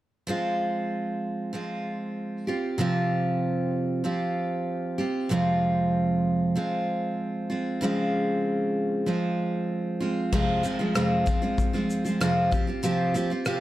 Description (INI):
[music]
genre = acoustic pop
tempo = 96 BPM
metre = 4/4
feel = straight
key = F minor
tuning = A4 = 440 Hz
[part]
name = picked steel-string acoustic guitar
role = accompaniment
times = 0.3-13.6 s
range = F2 to G4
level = -24 LUFS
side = right 1 dB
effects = none
[part]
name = loose indie drum kit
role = drums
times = 10.3-13.6 s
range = crash cymbal, kick drum, rim click, shaker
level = -29 LUFS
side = left 2 dB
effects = none
[sound]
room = light reverb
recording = dark, warm production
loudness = -24 LUFS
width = side -15 dB against mid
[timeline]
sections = 0.3-10.3 A section; 10.3-13.6 B section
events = none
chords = 0.3 Fm; 2.5 Csus4; 5.3 Fm; 7.5 Dbmaj7; 10.3 Fm; 12.5 Csus4